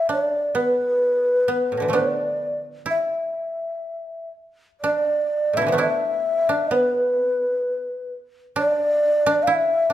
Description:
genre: japanese traditional, Japanese chamber music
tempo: 64 BPM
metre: 2/4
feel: rubato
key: E in sen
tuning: A4 = 441 Hz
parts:
  - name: breathy mellow long shakuhachi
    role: melody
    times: 0.0-9.9 s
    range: B4 to F5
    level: -20 LUFS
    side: left 1 dB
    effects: none
  - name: koto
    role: second line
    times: 0.0-9.9 s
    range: A2 to E4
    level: -25 LUFS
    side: right 3 dB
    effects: none
room: moderate recital hall reverb, RT60 1.5 s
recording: minimal, uncompressed stereo recording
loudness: -19 LUFS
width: side -12 dB against mid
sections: 0.0-4.8 A section; 4.8-9.9 B section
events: none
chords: none

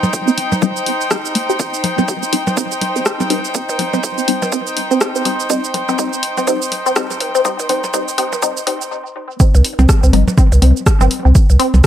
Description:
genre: minimal techno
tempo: 123 BPM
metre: 4/4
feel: swing 59% on 16ths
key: C minor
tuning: A4 = 440 Hz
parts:
  - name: punchy analog drum machine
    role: drums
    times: 0.0-11.9 s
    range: hi-hat, rim click, shaker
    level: -21 LUFS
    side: right 1 dB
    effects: overdrive
  - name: percussion blips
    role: percussion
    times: 0.0-11.8 s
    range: none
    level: -23 LUFS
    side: right 1 dB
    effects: analog delay
  - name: rich chamber string section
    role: texture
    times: 0.0-8.9 s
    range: Eb4 to G5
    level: -21 LUFS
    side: equal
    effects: sidechain pumping
  - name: electronic kick drum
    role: drums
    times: 0.1-11.9 s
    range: none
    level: -13 LUFS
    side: equal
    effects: overdrive, high-pass filter on kick
  - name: resonant blip pluck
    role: riff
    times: 0.3-11.9 s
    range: Bb3 to G4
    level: -19 LUFS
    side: right 1 dB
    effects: phaser, sidechain pumping, tape echo
  - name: filtered dub chord stab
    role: stabs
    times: 0.4-10.3 s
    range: G3 to Eb4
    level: -21 LUFS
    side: left 4 dB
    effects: phaser, tape echo
  - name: saturated sub bass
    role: bass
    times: 9.5-11.8 s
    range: G1 to C2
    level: -9 LUFS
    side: equal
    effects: sidechain pumping
room: moderate spring reverb, RT60 1.2 s, digital ambience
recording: echo-heavy mix, high-pass filter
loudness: -13 LUFS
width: side -11 dB against mid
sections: 0.0-9.4 A section; 9.4-11.9 B section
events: build-up 0.0-9.4; filter sweep on synth arpeggio sound 0.0-9.4; filter sweep on synth stab 0.0-9.4; stop 8.9-9.4; drop 9.4-11.9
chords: 0.0 Cm; 9.4 C5

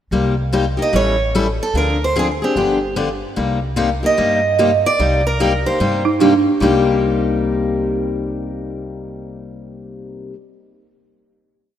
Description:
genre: acoustic string swing (jazz manouche)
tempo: 148 BPM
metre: 4/4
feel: swing 64% on 8ths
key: C minor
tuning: A4 = 440 Hz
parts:
  - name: picked steel-string acoustic guitar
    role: accompaniment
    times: 0.1-10.4 s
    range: C3 to A4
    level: -19 LUFS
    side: left 4 dB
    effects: none
  - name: upright bass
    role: bass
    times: 0.1-10.3 s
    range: G1 to G2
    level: -23 LUFS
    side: equal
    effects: none
  - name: picked steel-string acoustic guitar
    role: melody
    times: 0.8-6.2 s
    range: G4 to Eb5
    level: -18 LUFS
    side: right 4 dB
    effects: slapback echo
  - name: folk marimba with medium hard mallets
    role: second line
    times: 6.1-10.3 s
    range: D4 to Eb4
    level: -16 LUFS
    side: right 5 dB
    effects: none
room: moderate lush hall reverb, RT60 2.8 s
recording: rough home demo mix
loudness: -15 LUFS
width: side -10 dB against mid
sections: 0.1-6.6 A section; 6.6-9.9 final chord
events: none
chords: 0.1 Cm7; 0.9 A7; 1.7 Dm7b5; 2.6 G7; 3.4 Cm7

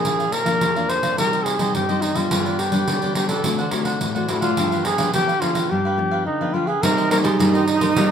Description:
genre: samba and choro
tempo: 106 BPM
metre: 4/4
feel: straight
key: C minor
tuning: A4 = 435 Hz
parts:
  - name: breathy trumpet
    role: melody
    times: 0.0-8.1 s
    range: Eb4 to C5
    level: -22 LUFS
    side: right 1 dB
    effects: none
  - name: cavaquinho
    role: accompaniment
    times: 0.0-8.1 s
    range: D4 to F#5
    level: -29 LUFS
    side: right 2 dB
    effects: none
  - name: nylon-string guitar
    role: accompaniment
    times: 0.0-8.1 s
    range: F2 to F#4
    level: -24 LUFS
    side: left 4 dB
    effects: none
  - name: pandeiro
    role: percussion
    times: 0.0-8.1 s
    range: none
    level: -24 LUFS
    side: right 2 dB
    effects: none
  - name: breathy hollow jazz flute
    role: second line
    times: 6.8-8.1 s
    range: Eb4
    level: -20 LUFS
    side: right 6 dB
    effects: none
  - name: nylon-string guitar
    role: bass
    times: 6.8-8.1 s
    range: C3 to G3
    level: -23 LUFS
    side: equal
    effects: none
room: moderate studio reverb, RT60 0.8 s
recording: close, detailed microphones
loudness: -18 LUFS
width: side -8 dB against mid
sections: 0.0-6.8 A section; 6.8-8.1 B section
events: none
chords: 0.0 Bb; 1.2 Cm; 2.3 G; 3.4 D7; 4.6 G7; 6.8 Cm7

